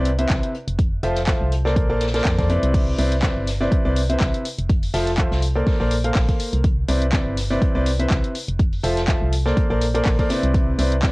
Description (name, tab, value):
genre	piano house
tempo	123 BPM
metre	4/4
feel	swing 54% on 16ths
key	C major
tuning	A4 = 439 Hz
part	clear concert grand piano	riff	0.0-11.1 s	C3 to F5	-22 LUFS	equal	sidechain pumping, cassette tape
part	organ-like FM bass	bass	0.0-11.1 s	F1 to F2	-22 LUFS	equal	sidechain pumping
part	house drum kit	drums	0.1-11.1 s	crash cymbal, handclaps, hi-hat	-29 LUFS	left 1 dB	overdrive, cassette tape
part	jazz brush drum kit	drums	0.1-11.1 s	hi-hat, snare drum	-36 LUFS	left 1 dB	sidechain pumping on hats, high-pass filter on hats, cassette tape, high-pass filter on snare, high-pass filter on room
part	electronic kick drum	drums	0.3-11.1 s	none	-20 LUFS	equal	overdrive, cassette tape
room	little or no reverb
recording	home recording on cassette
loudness	-18 LUFS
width	side -23 dB against mid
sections	0.0-11.1 A section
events	none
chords	0.0 Cmaj9; 0.5 Fmaj7; 1.8 Bbmaj9; 2.7 Cmaj9; 4.4 Fmaj7; 5.7 Bbmaj9; 6.6 Cmaj9; 8.3 Fmaj7; 9.6 Bbmaj9; 10.5 Cmaj9